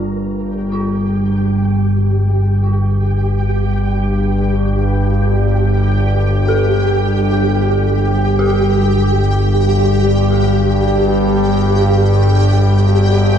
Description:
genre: dark ambient drone.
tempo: free time.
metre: none.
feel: none.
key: unclear.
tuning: A4 = 441 Hz.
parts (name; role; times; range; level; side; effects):
dark detuned synth bell; arpeggios; 0.0-13.4 s; F4 to A4; -27 LUFS; left 2 dB; chorus, phaser, diffuse ambient delay.
analog drone; drone; 0.0-13.4 s; G1 to G2; -13 LUFS; equal; chorus.
flickering grainy texture; texture; 0.0-13.4 s; G4 to Bb4; -19 LUFS; right 1 dB; built-in reverb, wide subtle chorus.
room: wet cathedral reverb, RT60 5.0 s.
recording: dreamy mix soaked in reverb.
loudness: -12 LUFS.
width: side -8 dB against mid.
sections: 0.1-13.4 A section.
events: fade-in on synth bell 0.1-13.4.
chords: 0.1 Gsus2.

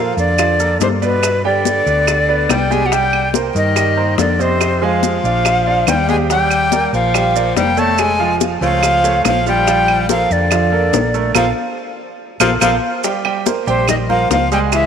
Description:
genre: Afro-Cuban jazz.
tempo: 142 BPM.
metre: 4/4.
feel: straight.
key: Bb major.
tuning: A4 = 440 Hz.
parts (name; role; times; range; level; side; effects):
breathy bright jazz flute; melody; 0.0-14.9 s; Cb5 to A5; -17 LUFS; right 1 dB; none.
warm tenor saxophone; second line; 0.0-14.9 s; Cb3 to A3; -21 LUFS; left 7 dB; slapback echo.
clear grand piano; accompaniment; 0.0-14.9 s; F3 to Ab5; -20 LUFS; right 9 dB; none.
hollow-body short-scale fingered electric bass; bass; 0.0-14.9 s; F1 to Bb2; -20 LUFS; equal; none.
congas; percussion; 0.2-14.9 s; none; -24 LUFS; left 12 dB; none.
maracas; percussion; 0.2-14.9 s; none; -26 LUFS; right 14 dB; none.
bongos; percussion; 0.4-14.9 s; none; -24 LUFS; left 11 dB; none.
claves; percussion; 0.4-14.9 s; none; -24 LUFS; right 11 dB; none.
room: wet plate reverb, RT60 3.3 s.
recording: 1960s-style stereo with parts hard left and right.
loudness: -12 LUFS.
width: side -7 dB against mid.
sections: 0.0-13.0 A section; 13.0-14.9 B section.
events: drum fill 6.1, 12.6-13.0; band accent 11.4-13.0.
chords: 0.0 Bbmaj7; 1.2 G; 2.9 Cm7; 4.6 Fm7; 5.5 Bb6; 6.3 Ebmaj7; 8.0 Faug; 9.7 Bbmaj7; 13.0 Bbm13.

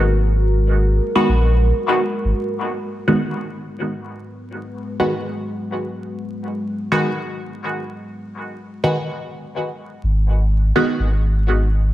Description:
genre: dub techno.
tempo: 125 BPM.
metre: 4/4.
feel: swing 56% on 16ths.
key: G# minor.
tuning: A4 = 439 Hz.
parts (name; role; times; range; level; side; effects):
deep dark ambient pad; sustained chords; 0.0-10.0 s; G#3 to B4; -27 LUFS; equal; chorus, built-in reverb.
warm sub bass; bass; 0.0-2.3, 10.0-11.9 s; G#1 to A#1; -16 LUFS; equal; tube saturation.
filtered dub chord stab; stabs; 1.2-11.0 s; D#3 to F#4; -21 LUFS; equal; phaser, dub echo.
room: moderate echo chamber reverb, RT60 1.9 s.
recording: vinyl crackle.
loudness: -18 LUFS.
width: side -14 dB against mid.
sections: 0.0-2.4 A section; 2.4-10.0 B section; 10.0-11.9 A section.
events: filter sweep on ambient pad 2.4-10.0.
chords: 0.0 G#7(no3); 2.4 G#m7; 10.0 N.C..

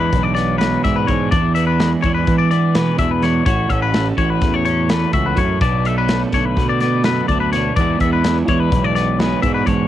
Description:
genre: math rock and midwest emo.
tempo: 252 BPM (eighths).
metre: 9/8.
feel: straight.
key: unclear.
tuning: A4 = 440 Hz.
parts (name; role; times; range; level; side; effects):
twelve-string electric guitar; accompaniment; 0.0-9.9 s; E2 to F#4; -20 LUFS; right 6 dB; cassette tape.
twangy electric guitar; arpeggios; 0.0-9.9 s; B4 to E5; -20 LUFS; left 8 dB; cassette tape.
fuzz fingered electric bass; bass; 0.0-9.9 s; A1 to E3; -19 LUFS; equal; overdrive.
modern studio drum kit; drums; 0.1-9.8 s; hi-hat, kick drum, snare drum; -21 LUFS; equal; none.
room: little or no reverb.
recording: home recording on cassette.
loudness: -14 LUFS.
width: side -12 dB against mid.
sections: 0.0-9.9 A section.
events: none.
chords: 0.0 E7; 3.5 A6; 5.6 Bm7; 7.8 E7.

